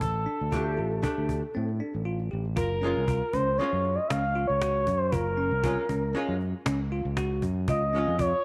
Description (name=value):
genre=progressive instrumental, band music in an uneven meter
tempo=117 BPM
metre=5/4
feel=straight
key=unclear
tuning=A4 = 441 Hz
part: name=expressive synth lead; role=melody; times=0.0-8.4 s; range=A4 to F5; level=-31 LUFS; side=equal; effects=chorus
part: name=overdriven fingered electric bass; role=bass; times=0.0-8.3 s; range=Gb1 to A2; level=-32 LUFS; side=equal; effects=none
part: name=cajon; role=drums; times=0.0-8.3 s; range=none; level=-37 LUFS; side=equal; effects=none
part: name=bell-like tine electric piano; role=arpeggios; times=0.3-8.3 s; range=C4 to G4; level=-37 LUFS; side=equal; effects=none
part: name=archtop guitar, miked and amplified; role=accompaniment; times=0.5-8.1 s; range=Ab3 to G4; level=-37 LUFS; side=equal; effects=double-tracked
room=moderate plate reverb, RT60 2.0 s, digital ambience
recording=none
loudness=-28 LUFS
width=mono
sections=0.0-2.6 A section; 2.6-8.4 B section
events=break 1.5-2.6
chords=0.0 Fadd9/A; 2.6 Gbmaj7; 7.7 Db